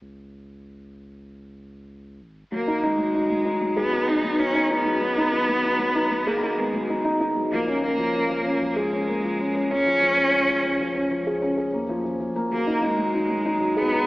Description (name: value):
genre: piano and strings electronica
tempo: 96 BPM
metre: 4/4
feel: straight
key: G# dorian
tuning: A4 = 440 Hz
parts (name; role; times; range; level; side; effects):
- warm sub bass; bass; 0.0-14.1 s; G#1 to D#2; -46 LUFS; equal; tube saturation
- rich cello; melody; 2.5-14.1 s; G#3 to D#4; -24 LUFS; equal; none
- felt-muted upright piano; riff; 2.5-14.1 s; E#3 to G#4; -23 LUFS; equal; analog delay
room: wet lush hall reverb, RT60 2.9 s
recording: dreamy mix soaked in reverb, AM radio sound, faint mains hum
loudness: -20 LUFS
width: side -19 dB against mid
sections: 0.0-14.1 A section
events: none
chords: 0.0 C#5; 2.5 G#m7; 7.5 C#6; 12.5 G#7(no3)